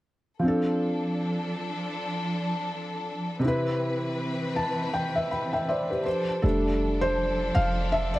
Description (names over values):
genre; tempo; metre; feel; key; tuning
R&B; 80 BPM; 4/4; swing 58% on 16ths; unclear; A4 = 439 Hz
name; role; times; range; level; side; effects
felt-muted upright piano; accompaniment; 0.4-8.2 s; C3 to B5; -26 LUFS; equal; none
warm symphonic string section; sustained chords; 0.4-8.2 s; E3 to B4; -31 LUFS; equal; none
warm 808-style bass; bass; 6.4-8.2 s; F1; -28 LUFS; equal; none
room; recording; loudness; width
light reverb; cassette tape; -25 LUFS; side -17 dB against mid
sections
0.4-6.4 A section; 6.4-8.2 B section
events
felt piano fill 4.2-6.4; felt piano solo 6.4-8.2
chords
0.4 F6; 3.4 Cmaj7; 6.1 F6